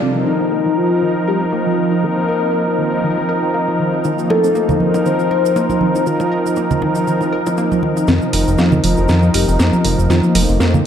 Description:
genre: nu-disco, nu disco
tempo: 119 BPM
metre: 4/4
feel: swing 55% on 16ths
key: unclear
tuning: A4 = 441 Hz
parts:
  - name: soft octave-layered synth lead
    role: melody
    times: 0.0-10.9 s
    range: C4 to C5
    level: -19 LUFS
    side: left 2 dB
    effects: chorus, phaser, tape echo
  - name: warm analog pad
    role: accompaniment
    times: 0.0-10.9 s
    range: F3 to Bb4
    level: -17 LUFS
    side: equal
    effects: chorus, slapback echo
  - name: analog pluck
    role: arpeggios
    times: 0.0-10.8 s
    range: Eb3 to Bb4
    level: -23 LUFS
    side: left 2 dB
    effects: chorus, tape echo
  - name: house drum kit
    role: drums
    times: 0.0-0.1, 8.1-10.7 s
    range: crash cymbal, hi-hat, snare drum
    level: -22 LUFS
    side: right 1 dB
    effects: overdrive, low-pass filter on hats, low-pass filter on perc, low-pass filter on snare, low-pass filter on cymbals, low-pass filter on room
  - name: cabasa, bongos and congas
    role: percussion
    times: 4.0-10.8 s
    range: none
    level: -22 LUFS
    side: right 4 dB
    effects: none
  - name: fat analog bass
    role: bass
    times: 8.1-10.8 s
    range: F1 to F2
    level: -15 LUFS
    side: equal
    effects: none
room: moderate echo chamber reverb, RT60 2.0 s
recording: dark, warm production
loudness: -13 LUFS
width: side -8 dB against mid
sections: 0.0-8.1 A section; 8.1-10.9 B section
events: filter sweep on synth arpeggio sound 0.0-8.1; build-up 8.1-10.9; drum fill 8.1-10.9; filter sweep on soft synth lead 8.1-10.9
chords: 0.0 F7sus4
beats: | 0.01 0.52 1.02 1.53 | 2.03 2.54 3.04 3.54 | 4.05 4.55 5.06 5.56 | 6.07 6.57 7.07 7.58 | 8.08 8.59 9.09 9.60 | 10.10 10.60

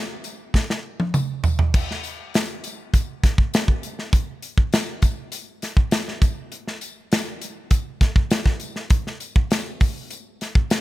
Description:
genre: pop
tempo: 100 BPM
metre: 4/4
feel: straight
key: none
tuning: none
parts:
  - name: modern studio drum kit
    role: drums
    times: 0.2-10.8 s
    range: crash cymbal, hi-hat, kick drum, snare drum, toms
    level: -20 LUFS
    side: equal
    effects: none
  - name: tambourine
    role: percussion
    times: 0.2-10.8 s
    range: none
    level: -38 LUFS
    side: left 5 dB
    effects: none
room: little or no reverb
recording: none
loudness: -20 LUFS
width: side -17 dB against mid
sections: 0.0-1.7 A section; 1.7-10.8 B section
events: drum fill 0.5-1.7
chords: none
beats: 0.54 1.14 | 1.74 2.34 2.93 3.53 | 4.13 4.73 5.32 5.92 | 6.52 7.12 7.71 8.31 | 8.91 9.51 10.11 10.71

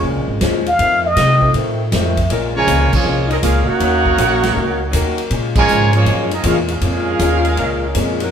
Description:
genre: jazz, big band swing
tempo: 159 BPM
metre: 4/4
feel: swing 66% on 8ths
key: Bb minor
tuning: A4 = 440 Hz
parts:
  - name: trumpet with plunger mute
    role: melody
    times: 0.0-1.6 s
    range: Eb5 to F5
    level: -15 LUFS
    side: left 1 dB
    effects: none
  - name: picked swing-style acoustic guitar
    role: accompaniment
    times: 0.0-8.2 s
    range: F2 to Gb4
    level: -22 LUFS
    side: left 5 dB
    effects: none
  - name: warm grand piano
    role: accompaniment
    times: 0.0-1.9 s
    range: Ab3 to Bb4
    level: -25 LUFS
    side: right 2 dB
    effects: none
  - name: upright bass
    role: bass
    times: 0.0-8.3 s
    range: Ab1 to C3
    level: -18 LUFS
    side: equal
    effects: none
  - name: swinging big-band drum kit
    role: drums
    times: 0.0-8.3 s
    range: crash cymbal, hi-hat, kick drum, ride cymbal, snare drum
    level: -23 LUFS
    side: equal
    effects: none
  - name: warm saxophone section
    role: sustained chords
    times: 2.3-5.3, 7.6-8.3 s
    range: Gb3 to Bb4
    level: -25 LUFS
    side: left 2 dB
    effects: none
  - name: clear trombone section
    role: second line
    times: 2.5-8.2 s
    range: Db3 to Gb4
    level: -20 LUFS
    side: right 1 dB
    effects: none
  - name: clear trumpet section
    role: melody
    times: 2.6-8.2 s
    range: Bb3 to Ab5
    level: -18 LUFS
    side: right 2 dB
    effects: none
room: moderate large studio reverb, RT60 1.0 s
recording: band playing live in one room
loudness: -13 LUFS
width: side -8 dB against mid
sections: 0.0-2.3 A section; 2.3-8.3 B section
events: muted trumpet solo 0.0-2.3; band accent 2.9, 5.5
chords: 0.0 Bbm7; 0.8 F7; 2.3 Bbm7; 3.8 Ebm7; 5.3 Bbm7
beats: 0.04 0.41 | 0.79 1.17 1.54 1.92 | 2.30 2.68 3.05 3.43 | 3.81 4.18 4.56 4.94 | 5.31 5.69 6.07 6.45 | 6.82 7.20 7.58 7.95

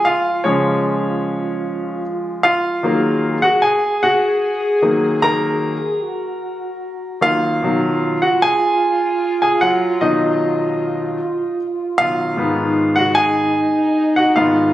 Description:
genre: six-eight pop ballad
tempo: 50 BPM (dotted quarters)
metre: 6/8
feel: straight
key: unclear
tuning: A4 = 439 Hz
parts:
  - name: warm French horn section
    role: second line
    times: 0.0-14.7 s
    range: D#4 to G#4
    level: -20 LUFS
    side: right 1 dB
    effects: none
  - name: clear baby grand piano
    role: accompaniment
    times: 0.0-14.7 s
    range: G#2 to A#5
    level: -16 LUFS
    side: equal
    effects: none
room: light reverb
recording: recorded on a phone in the room, club reverb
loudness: -15 LUFS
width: side -14 dB against mid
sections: 0.0-14.7 A section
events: grand piano solo 0.0-14.7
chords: 0.0 C#; 2.8 D#m; 7.6 B; 12.4 G#m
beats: | 0.46 1.65 | 2.84 4.03 | 5.22 6.42 | 7.62 8.82 | 10.02 11.21 | 12.39 13.58

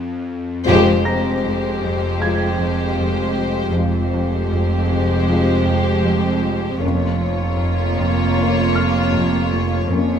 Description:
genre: cinematic, suspense film score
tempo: 78 BPM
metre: 4/4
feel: straight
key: F minor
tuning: A4 = 439 Hz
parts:
  - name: bowed-like drone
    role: drone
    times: 0.0-10.2 s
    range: F2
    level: -24 LUFS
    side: left 1 dB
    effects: built-in reverb
  - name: felt-muted upright piano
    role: texture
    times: 0.0-10.2 s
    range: Bb5 to Bb6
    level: -30 LUFS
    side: equal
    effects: none
  - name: warm studio violin section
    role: melody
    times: 0.7-10.2 s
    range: C5 to Db5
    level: -26 LUFS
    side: left 4 dB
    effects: none
  - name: dark studio violin section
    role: second line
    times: 0.7-10.2 s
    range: F4 to G4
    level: -25 LUFS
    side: left 3 dB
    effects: none
  - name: dark studio viola section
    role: accompaniment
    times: 0.7-10.2 s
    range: Ab3 to Bb3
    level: -24 LUFS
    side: right 3 dB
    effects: none
  - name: dark French horn section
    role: sustained chords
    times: 0.7-10.2 s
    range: Ab3 to F4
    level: -23 LUFS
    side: left 4 dB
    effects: none
  - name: warm studio cello section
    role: riff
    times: 0.7-10.1 s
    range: F2 to F3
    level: -26 LUFS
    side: right 1 dB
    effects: none
  - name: rich studio double bass section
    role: bass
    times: 0.7-10.2 s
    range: F1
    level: -24 LUFS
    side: right 2 dB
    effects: none
  - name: rich symphonic cello section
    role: bass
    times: 0.7-10.2 s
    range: F2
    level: -24 LUFS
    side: right 3 dB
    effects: none
  - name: timpani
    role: percussion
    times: 0.7-1.8 s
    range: F2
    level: -27 LUFS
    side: left 2 dB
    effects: none
room: moderate scoring stage reverb, RT60 1.8 s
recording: minimal, uncompressed stereo recording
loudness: -16 LUFS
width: side -8 dB against mid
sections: 0.7-10.2 A section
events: break 0.0-0.7; band accent 0.7-1.4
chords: 0.0 N.C.; 0.7 Fmadd9; 6.8 Bbm/F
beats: | 0.67 1.44 2.21 2.98 | 3.75 4.52 5.29 6.06 | 6.83 7.60 8.37 9.13 | 9.90

